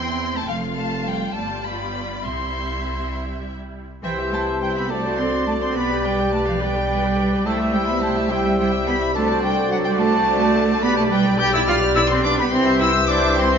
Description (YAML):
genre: quick classical-period movement for symphony orchestra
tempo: 70 BPM (dotted quarters)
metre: 6/8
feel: straight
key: C major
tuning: A4 = 440 Hz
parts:
  - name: rich chamber violin section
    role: melody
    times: 0.0-13.6 s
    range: B4 to C6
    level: -30 LUFS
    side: left 2 dB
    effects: none
  - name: clear chamber violin section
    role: second line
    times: 0.0-13.6 s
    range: D5 to G6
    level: -29 LUFS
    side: left 2 dB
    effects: none
  - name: clear studio viola section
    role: accompaniment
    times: 0.0-13.6 s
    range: G3 to E5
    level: -28 LUFS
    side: right 2 dB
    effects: none
  - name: clear studio double bass section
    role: bass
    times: 0.0-13.6 s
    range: F1 to E2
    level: -28 LUFS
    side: right 1 dB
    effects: none
  - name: rich studio cello section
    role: bass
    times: 0.0-13.6 s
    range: E3 to G4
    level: -23 LUFS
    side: right 2 dB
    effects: none
  - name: concert flute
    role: second line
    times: 4.0-13.6 s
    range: E5 to G6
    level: -26 LUFS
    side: left 1 dB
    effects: none
  - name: dark clarinet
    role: second line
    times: 4.0-13.6 s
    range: F#4 to G4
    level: -30 LUFS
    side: left 1 dB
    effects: none
  - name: warm oboe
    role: second line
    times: 4.0-13.6 s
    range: C5 to E5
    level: -27 LUFS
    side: equal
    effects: none
  - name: mellow bassoon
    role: accompaniment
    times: 4.0-13.6 s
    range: D3 to G3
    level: -28 LUFS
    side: right 2 dB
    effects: none
  - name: mellow French horn section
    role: sustained chords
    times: 4.0-13.6 s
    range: E4 to D5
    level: -27 LUFS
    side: left 4 dB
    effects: none
room: wet scoring stage reverb, RT60 1.7 s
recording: nothing above 7.5 kHz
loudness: -18 LUFS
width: side -7 dB against mid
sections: 0.0-4.0 A section; 4.0-13.6 A section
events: none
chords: 0.5 F; 1.4 G7; 2.2 C; 4.9 D7/C; 5.8 G/B; 7.5 C; 9.2 D7/C; 10.8 G/B; 11.7 G7/B; 12.5 C